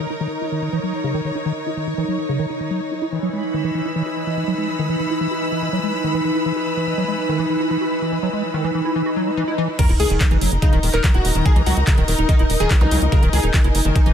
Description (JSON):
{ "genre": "psychedelic trance", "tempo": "144 BPM", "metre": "4/4", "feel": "straight", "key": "Eb phrygian", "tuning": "A4 = 442 Hz", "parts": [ { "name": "evolving wavetable pad", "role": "sustained chords", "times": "0.0-14.1 s", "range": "Eb4", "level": "-26 LUFS", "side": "right 2 dB", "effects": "ensemble chorus, built-in reverb, phaser, sidechain pumping" }, { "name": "liquid acid bass", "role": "riff", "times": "0.0-14.1 s", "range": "Db3 to Gb4", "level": "-24 LUFS", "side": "equal", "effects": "chorus, auto-pan, sidechain pumping, digital delay" }, { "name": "rich studio string section", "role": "texture", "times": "0.0-14.1 s", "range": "E3 to E6", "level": "-26 LUFS", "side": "left 2 dB", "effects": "sidechain pumping" }, { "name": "swell, sub drop and zap", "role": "sound effects", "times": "9.1-12.9 s", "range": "none", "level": "-27 LUFS", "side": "left 1 dB", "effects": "none" }, { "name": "supersaw stab", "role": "melody", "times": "9.8-14.1 s", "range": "Eb4 to Bb4", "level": "-25 LUFS", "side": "left 1 dB", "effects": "phaser, cassette tape, sidechain pumping, dub echo" }, { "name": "drum and bass drum kit", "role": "drums", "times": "9.8-14.1 s", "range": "crash cymbal, handclaps, hi-hat", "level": "-25 LUFS", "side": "right 1 dB", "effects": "overdrive, low-pass filter on hats, low-pass filter on snare, low-pass filter on cymbals, low-pass filter on room" }, { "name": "electronic kick drum", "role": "drums", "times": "9.8-14.0 s", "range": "none", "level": "-15 LUFS", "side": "equal", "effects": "overdrive" }, { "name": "tight sequencer bass", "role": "bass", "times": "9.9-14.1 s", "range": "Eb1 to Db2", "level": "-19 LUFS", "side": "equal", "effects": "none" } ], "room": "light reverb", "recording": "none", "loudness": "-17 LUFS", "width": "side -9 dB against mid", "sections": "0.0-9.8 A section; 9.8-14.1 B section", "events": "filter sweep on acid bass 0.0-9.8; swell 9.1-9.8; drop 9.8-14.1; impact 9.8-11.5", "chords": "0.0 Eb5; 3.1 E5; 9.8 Eb5", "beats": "0.21 0.62 1.04 | 1.46 1.87 2.29 2.71 | 3.12 3.54 3.96 4.37 | 4.79 5.21 5.62 6.04 | 6.46 6.87 7.29 7.71 | 8.12 8.54 8.96 9.37 | 9.79 10.21 10.62 11.04 | 11.46 11.87 12.29 12.71 | 13.12 13.54 13.96" }